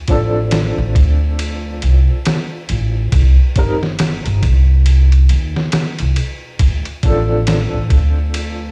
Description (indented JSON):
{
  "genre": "trip hop",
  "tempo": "69 BPM",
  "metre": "4/4",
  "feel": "swing 60% on 16ths",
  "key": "unclear",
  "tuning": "A4 = 440 Hz",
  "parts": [
    { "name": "dark upright piano", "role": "accompaniment", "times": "0.1-8.7 s", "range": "F3 to Bb4", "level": "-24 LUFS", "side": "equal", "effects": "tremolo, tape echo" },
    { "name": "upright bass", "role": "bass", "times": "0.1-8.7 s", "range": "G1 to Eb2", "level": "-16 LUFS", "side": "equal", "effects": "tube saturation" },
    { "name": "trip hop sampler-style drum kit", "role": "drums", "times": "0.1-8.6 s", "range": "kick drum, ride cymbal, snare drum", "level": "-21 LUFS", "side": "equal", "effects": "studio reverb" }
  ],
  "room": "studio reverb",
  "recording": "dry, gritty hardware recording, cassette tape",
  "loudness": "-15 LUFS",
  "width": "mono",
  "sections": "0.0-8.7 A section",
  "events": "none",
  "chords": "0.0 Dm7; 3.1 C5; 6.6 Dm7"
}